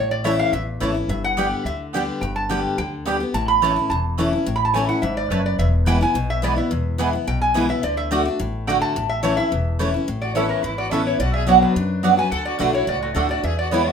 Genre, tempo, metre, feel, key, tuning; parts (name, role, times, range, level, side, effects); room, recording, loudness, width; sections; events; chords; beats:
bluegrass; 214 BPM; 4/4; straight; A major; A4 = 442 Hz
lap resonator guitar; melody; 0.0-13.9 s; F#4 to B5; -23 LUFS; right 1 dB
picked steel-string acoustic guitar; accompaniment; 0.0-13.9 s; E2 to G4; -23 LUFS; left 3 dB
upright bass; bass; 0.0-13.9 s; E1 to F#2; -25 LUFS; left 1 dB
mandolin; stabs; 0.2-13.8 s; A3 to B5; -21 LUFS; right 7 dB
clear fiddle; second line; 10.2-13.9 s; A3 to B4; -30 LUFS; left 3 dB
wet studio reverb, RT60 0.6 s; minimal, uncompressed stereo recording; -18 LUFS; side -7 dB against mid
0.0-1.1 A section; 1.1-10.1 A section; 10.1-13.9 B section
resonator guitar played with a steel bar solo 0.0-10.1
0.0 A; 1.1 G; 3.3 A; 5.6 E; 7.8 D; 9.0 A; 10.1 Aadd9; 11.2 Bm; 12.3 D
0.25 0.53 0.81 | 1.09 1.37 1.65 1.94 | 2.22 2.50 2.78 3.06 | 3.34 3.62 3.90 4.18 | 4.47 4.75 5.03 5.31 | 5.59 5.87 6.15 6.43 | 6.71 6.99 7.27 7.55 | 7.83 8.11 8.39 8.67 | 8.95 9.23 9.51 9.79 | 10.07 10.36 10.63 10.92 | 11.20 11.48 11.76 12.04 | 12.32 12.60 12.88 13.16 | 13.44 13.72